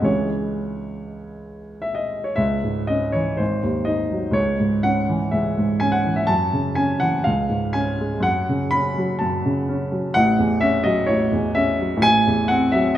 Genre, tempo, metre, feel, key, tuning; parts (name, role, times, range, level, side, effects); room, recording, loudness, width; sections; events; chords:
classical, romantic character piece for solo piano; 100-131 BPM; 4/4; rubato; C# minor; A4 = 441 Hz
warm baby grand piano; solo; 0.0-13.0 s; G#1 to B5; -18 LUFS; equal
moderate concert hall reverb, RT60 2.2 s; faint mains hum; -18 LUFS; side -12 dB against mid
0.0-2.4 A section; 2.4-13.0 B section
0.1 C#m; 3.4 G#7; 4.4 C#m; 6.3 F#m7; 7.3 C#; 8.2 F#m; 10.2 F#m7/A; 12.0 F#m7b5/A